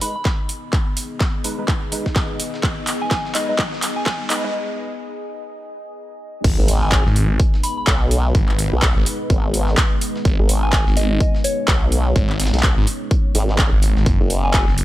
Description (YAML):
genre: bass house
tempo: 126 BPM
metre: 4/4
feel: swing 59% on 16ths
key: G# minor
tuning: A4 = 440 Hz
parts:
  - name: soft synth bell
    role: melody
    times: 0.0-14.6 s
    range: C#5 to B5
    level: -26 LUFS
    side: left 1 dB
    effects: chorus, dub echo
  - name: deep dark ambient pad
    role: sustained chords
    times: 0.5-14.8 s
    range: G#3 to D#5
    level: -29 LUFS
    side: left 2 dB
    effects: chorus, built-in reverb, sidechain pumping
  - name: percussive organ stab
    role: stabs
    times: 0.0-4.5 s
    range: G#3 to B4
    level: -32 LUFS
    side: right 3 dB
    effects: ensemble chorus, cassette tape, sidechain pumping, dub echo
  - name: big-room dance drum kit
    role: drums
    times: 0.0-14.8 s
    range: crash cymbal, handclaps, hi-hat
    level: -23 LUFS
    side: equal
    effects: overdrive
  - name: dusty soul sampler-style drum kit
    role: drums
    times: 0.0-14.8 s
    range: hi-hat, snare drum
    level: -32 LUFS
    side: equal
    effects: sidechain pumping on hats, high-pass filter on hats, high-pass filter on snare
  - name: riser and impact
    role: sound effects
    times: 1.1-8.3 s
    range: none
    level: -32 LUFS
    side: equal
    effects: none
  - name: electronic kick drum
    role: drums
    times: 0.3-14.7 s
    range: none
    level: -18 LUFS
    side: equal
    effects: overdrive
  - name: phased detuned saw bass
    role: bass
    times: 6.4-14.8 s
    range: F#1 to G#1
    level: -18 LUFS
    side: equal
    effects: phaser, tube saturation, sidechain pumping
  - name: formant-sweep wobble bass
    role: bass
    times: 6.6-14.7 s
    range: F#1 to B1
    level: -18 LUFS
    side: equal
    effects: chorus, tube saturation, sidechain pumping
room: digital ambience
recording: high-pass filter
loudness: -16 LUFS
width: side -15 dB against mid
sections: 0.0-6.4 A section; 6.4-14.8 B section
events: build-up 0.0-6.4; drum fill 0.0-4.5; filter sweep on synth stab 0.0-6.4; filter sweep 0.0-6.4; riser 1.1-4.5; break 4.5-6.4; drop 6.4-14.8; impact 6.4-8.3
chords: 0.0 G#m; 14.1 F#